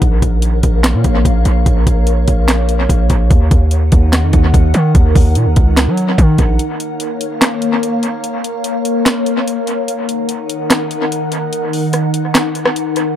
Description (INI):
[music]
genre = hip hop, trap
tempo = 146 BPM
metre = 4/4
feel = half-time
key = unclear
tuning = A4 = 439 Hz
[part]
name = glassy FM pad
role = sustained chords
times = 0.0-13.1 s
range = Eb3 to Gb5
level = -18 LUFS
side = left 2 dB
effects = ensemble chorus, built-in reverb, phaser
[part]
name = distorted 808-style bass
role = bass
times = 0.0-6.6 s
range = Bb1 to Gb3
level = -13 LUFS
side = equal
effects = distortion
[part]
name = trap drum kit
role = drums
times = 0.0-13.1 s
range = handclaps, hi-hat, kick drum, rim click, snare drum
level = -14 LUFS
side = equal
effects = dub echo
[sound]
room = little or no reverb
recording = echo-heavy mix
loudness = -11 LUFS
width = side -11 dB against mid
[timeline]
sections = 0.0-13.2 A section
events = break 6.6-13.2; kick muted 12.3-13.2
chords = 0.0 Bbm; 3.3 Ebm; 6.6 Bbm; 9.9 Ebm